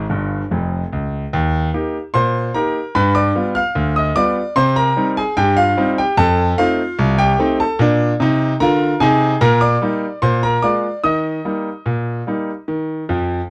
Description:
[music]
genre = ragtime piano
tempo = 74 BPM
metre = 2/4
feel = straight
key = Eb major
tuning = A4 = 445 Hz
[part]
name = clear concert grand piano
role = solo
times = 0.0-13.5 s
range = F1 to F6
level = -17 LUFS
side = equal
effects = none
[sound]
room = light reverb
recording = dry, close 1970s-style studio recording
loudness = -17 LUFS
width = mono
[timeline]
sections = 0.0-1.3 A section; 1.3-13.5 B section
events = grand piano fill 0.1-1.3, 13.1-13.5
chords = 0.0 Ab; 1.3 Eb; 3.0 G7; 4.6 Cm; 6.2 F7; 7.8 Bb7; 9.4 Eb/Bb; 10.2 Bb7; 11.0 Eb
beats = 0.51 | 1.33 2.14 | 2.95 3.76 | 4.56 5.37 | 6.18 6.99 | 7.79 8.60 | 9.41 10.22 | 11.04 11.86 | 12.68

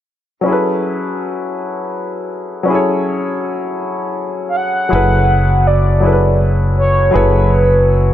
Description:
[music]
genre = slow six-eight R&B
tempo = 54 BPM (dotted quarters)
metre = 6/8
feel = straight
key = F# minor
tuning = A4 = 440 Hz
[part]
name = warm grand piano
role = accompaniment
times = 0.4-8.1 s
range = F#3 to C#5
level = -17 LUFS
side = left 2 dB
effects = none
[part]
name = mellow horn-like synth lead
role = melody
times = 4.5-8.1 s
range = B4 to F#5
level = -15 LUFS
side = right 1 dB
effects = chorus, ping-pong delay
[part]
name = mellow fretless electric bass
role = bass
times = 4.9-8.1 s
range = F#1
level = -13 LUFS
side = equal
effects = none
[sound]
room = light reverb, studio reverb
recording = none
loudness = -13 LUFS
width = side -11 dB against mid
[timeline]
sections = 0.5-4.9 A section; 4.9-8.1 B section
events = none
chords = 0.5 F#m11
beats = | 0.46 1.57 | 2.69 3.80 | 4.91 6.02 | 7.13

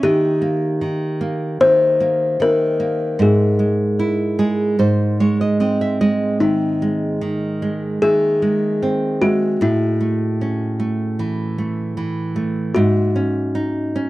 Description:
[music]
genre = children's music, lullaby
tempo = 76 BPM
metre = 4/4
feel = straight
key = unclear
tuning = A4 = 439 Hz
[part]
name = kalimba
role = melody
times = 0.0-14.1 s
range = D#4 to B#4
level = -19 LUFS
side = left 2 dB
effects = none
[part]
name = nylon-string guitar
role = accompaniment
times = 0.0-14.1 s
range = G#2 to E5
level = -18 LUFS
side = right 1 dB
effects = none
[sound]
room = small room ambience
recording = dry, close 1970s-style studio recording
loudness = -16 LUFS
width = side -17 dB against mid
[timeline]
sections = 0.0-14.1 A section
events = nylon-string guitar fill 4.0-6.4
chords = 0.0 D#; 3.2 E/G#; 4.8 G#; 9.6 A; 12.7 G#7sus4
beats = | 0.02 0.81 1.60 2.40 | 3.19 3.98 4.79 5.60 | 6.40 7.21 8.01 8.80 | 9.60 10.39 11.18 11.96 | 12.75 13.54

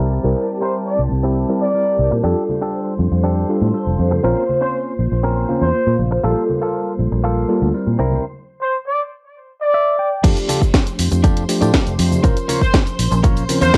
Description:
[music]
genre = filtered disco house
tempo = 120 BPM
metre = 4/4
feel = straight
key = F major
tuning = A4 = 440 Hz
[part]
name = mellow tine electric piano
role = accompaniment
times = 0.0-13.8 s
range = F3 to C5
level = -24 LUFS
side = equal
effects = phaser, sidechain pumping, low-pass filter
[part]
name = phased string machine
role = sustained chords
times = 0.0-13.8 s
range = G4 to C6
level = -33 LUFS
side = equal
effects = ensemble chorus, phaser, sidechain pumping, low-pass filter
[part]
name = direct-recorded clean electric guitar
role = riff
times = 0.0-13.8 s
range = Bb3 to G5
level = -26 LUFS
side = equal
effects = sidechain pumping, low-pass filter
[part]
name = fingered electric bass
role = bass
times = 0.0-13.7 s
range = F1 to Bb2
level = -20 LUFS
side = equal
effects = sidechain pumping, low-pass filter
[part]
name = clear trumpet section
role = melody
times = 0.6-13.8 s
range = C5 to D5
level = -21 LUFS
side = equal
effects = sidechain pumping, low-pass filter, cassette tape
[part]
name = tambourine and congas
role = percussion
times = 2.2-13.8 s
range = none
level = -32 LUFS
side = equal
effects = sidechain pumping on perc, low-pass filter on perc
[part]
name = electronic kick drum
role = drums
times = 10.2-13.8 s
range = none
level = -17 LUFS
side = equal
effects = cassette tape
[part]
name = house drum kit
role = drums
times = 10.2-13.8 s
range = crash cymbal, hi-hat, shaker, snare drum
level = -23 LUFS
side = equal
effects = sidechain pumping on hats, cassette tape, sidechain pumping on cymbals, sidechain pumping on perc
[sound]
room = light reverb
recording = home recording on cassette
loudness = -18 LUFS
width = mono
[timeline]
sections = 0.0-10.2 A section; 10.2-13.8 B section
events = filter sweep 0.0-10.2; break 8.2-10.2; clean electric guitar fill 9.5-10.2; drop 10.2-13.8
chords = 0.0 C7; 2.2 F69; 4.2 Bbmadd9; 6.2 Gm9/Bb; 8.0 C7; 10.2 F69; 12.2 Bbmadd9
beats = | 0.24 0.74 1.24 1.74 | 2.24 2.74 3.24 3.74 | 4.24 4.74 5.24 5.74 | 6.24 6.74 7.24 7.74 | 8.24 8.74 9.24 9.74 | 10.24 10.74 11.24 11.74 | 12.24 12.74 13.24 13.74

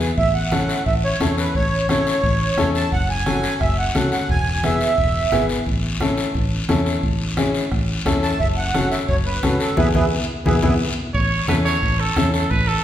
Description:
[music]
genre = latin, cumbia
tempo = 175 BPM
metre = 4/4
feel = straight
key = A major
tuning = A4 = 440 Hz
[part]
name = accordion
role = melody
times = 0.0-5.5, 8.2-10.7 s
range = G#4 to A5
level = -22 LUFS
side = right 3 dB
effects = light tremolo tuning
[part]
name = clear upright piano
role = accompaniment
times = 0.0-12.4 s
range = B3 to A4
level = -23 LUFS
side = left 3 dB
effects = none
[part]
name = fingered electric bass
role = bass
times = 0.0-12.8 s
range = E1 to E2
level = -23 LUFS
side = equal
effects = none
[part]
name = guiro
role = percussion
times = 0.0-12.8 s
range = none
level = -29 LUFS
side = left 4 dB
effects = none
[part]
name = bombo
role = percussion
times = 0.2-12.7 s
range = none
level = -26 LUFS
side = right 1 dB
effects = none
[part]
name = congas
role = percussion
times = 0.2-12.7 s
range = none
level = -28 LUFS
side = equal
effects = none
[part]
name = clear trumpet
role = second line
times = 11.1-12.8 s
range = A4 to C#5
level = -21 LUFS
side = right 4 dB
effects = none
[sound]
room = wet recital hall reverb, RT60 1.4 s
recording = recorded in a church or concert hall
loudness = -17 LUFS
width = side -11 dB against mid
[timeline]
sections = 0.0-11.1 A section; 11.1-12.8 B section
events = band accent 9.8-11.1; trumpet solo 11.1-12.8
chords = 0.2 A; 2.9 F#madd9; 4.3 E; 5.7 A; 8.4 F#m; 9.8 E; 11.1 A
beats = | 0.18 0.52 0.86 1.21 | 1.55 1.89 2.23 2.58 | 2.92 3.26 3.61 3.95 | 4.29 4.63 4.98 5.32 | 5.66 6.00 6.35 6.69 | 7.03 7.38 7.72 8.06 | 8.40 8.74 9.09 9.43 | 9.77 10.11 10.46 10.80 | 11.14 11.48 11.82 12.17 | 12.51

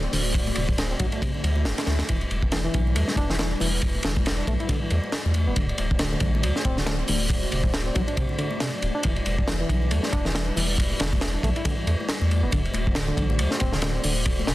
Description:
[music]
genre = breakbeat, breaks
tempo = 138 BPM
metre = 4/4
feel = swing 58% on 16ths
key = E minor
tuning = A4 = 440 Hz
[part]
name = dark analog pad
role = sustained chords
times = 0.0-14.5 s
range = G3 to D5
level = -34 LUFS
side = equal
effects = chorus, sidechain pumping
[part]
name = barky reed electric piano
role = riff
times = 0.0-14.5 s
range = C3 to E4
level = -31 LUFS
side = equal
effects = overdrive, tape echo
[part]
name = saturated sub bass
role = bass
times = 0.0-14.5 s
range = D1 to E2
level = -26 LUFS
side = equal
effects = tube saturation
[part]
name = crunchy breakbeat drum kit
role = drums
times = 0.1-14.5 s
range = hi-hat, kick drum, ride cymbal, snare drum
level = -25 LUFS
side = equal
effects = none
[part]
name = congas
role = percussion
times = 0.1-14.5 s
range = none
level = -36 LUFS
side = left 5 dB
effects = none
[part]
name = swell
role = sound effects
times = 1.3-2.1 s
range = none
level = -40 LUFS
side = left 2 dB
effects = none
[sound]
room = studio ambience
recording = dense, heavily limited modern master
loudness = -22 LUFS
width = side -16 dB against mid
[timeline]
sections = 0.0-14.5 A section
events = swell 1.3-2.1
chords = 0.0 D7; 2.1 Em7; 5.6 D7; 9.0 Em7; 12.5 D7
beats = | 0.35 0.78 1.22 1.65 | 2.09 2.52 2.96 3.39 | 3.83 4.26 4.70 5.13 | 5.56 6.00 6.43 6.87 | 7.30 7.74 8.17 8.61 | 9.04 9.48 9.91 10.35 | 10.78 11.22 11.65 12.09 | 12.52 12.96 13.39 13.82 | 14.26

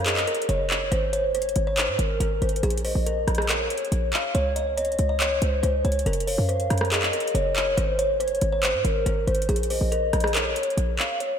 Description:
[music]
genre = hip hop, trap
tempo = 140 BPM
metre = 4/4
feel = half-time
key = Bb minor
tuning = A4 = 435 Hz
[part]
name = kalimba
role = melody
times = 0.0-11.4 s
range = Ab4 to Eb5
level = -27 LUFS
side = equal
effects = low-pass filter, tape echo
[part]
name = hollow clarinet-like synth lead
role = second line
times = 0.0-11.2 s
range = Bb4 to F5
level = -28 LUFS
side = left 2 dB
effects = chorus, tape echo
[part]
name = short 808-style bass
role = bass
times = 0.0-11.0 s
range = Gb1 to Ab2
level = -26 LUFS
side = equal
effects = none
[part]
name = booming analog drum machine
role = drums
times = 0.1-11.3 s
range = handclaps, hi-hat, rim click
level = -27 LUFS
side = equal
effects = none
[sound]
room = wet lush hall reverb, RT60 1.7 s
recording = dreamy mix soaked in reverb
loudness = -21 LUFS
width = side -8 dB against mid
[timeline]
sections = 0.0-11.2 A section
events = none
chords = 0.0 Gb5; 0.9 Ab; 2.6 Bbm; 4.3 Dbsus2; 6.1 Gb5; 7.8 Ab; 9.5 Bbm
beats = 0.06 0.49 | 0.92 1.35 1.77 2.20 | 2.63 3.06 3.49 3.92 | 4.35 4.78 5.20 5.63 | 6.06 6.49 6.92 7.35 | 7.78 8.20 8.63 9.06 | 9.49 9.92 10.35 10.78 | 11.20

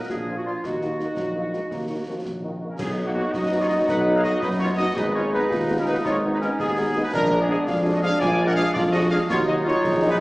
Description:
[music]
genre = military-style march for wind band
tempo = 111 BPM (dotted quarters)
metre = 6/8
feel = straight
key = Eb minor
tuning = A4 = 440 Hz
[part]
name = mellow euphonium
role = second line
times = 0.0-10.2 s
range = D4 to Ab4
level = -26 LUFS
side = equal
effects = none
[part]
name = clear trombone section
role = sustained chords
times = 0.0-10.2 s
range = Db3 to Eb4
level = -29 LUFS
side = equal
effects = none
[part]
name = clear woodwind section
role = second line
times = 0.1-10.2 s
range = Bb3 to D5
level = -30 LUFS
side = equal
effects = none
[part]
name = mellow tuba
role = bass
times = 0.1-10.2 s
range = Ab1 to Bb2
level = -27 LUFS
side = equal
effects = none
[part]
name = concert snare drum, concert bass drum and clash cymbals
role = drums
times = 0.1-10.2 s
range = none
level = -33 LUFS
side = equal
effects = none
[part]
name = dark trumpet section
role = melody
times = 0.3-10.2 s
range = F4 to Ab5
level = -26 LUFS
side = equal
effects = none
[part]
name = dark French horn section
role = accompaniment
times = 0.3-10.1 s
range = Eb3 to Eb4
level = -30 LUFS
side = left 1 dB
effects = none
[sound]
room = wet recital hall reverb, RT60 1.6 s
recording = recorded in a church or concert hall, small speaker sound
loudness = -20 LUFS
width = side -20 dB against mid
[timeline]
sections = 0.0-2.8 A section; 2.8-10.2 B section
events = none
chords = 0.1 Bb7; 0.6 Ebm; 2.8 B; 5.0 Abm; 7.1 Bb7; 9.3 Ebm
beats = 0.09 | 0.63 1.18 | 1.72 2.26 | 2.80 3.34 | 3.88 4.42 | 4.96 5.50 | 6.05 6.59 | 7.13 7.67 | 8.21 8.75 | 9.29 9.84

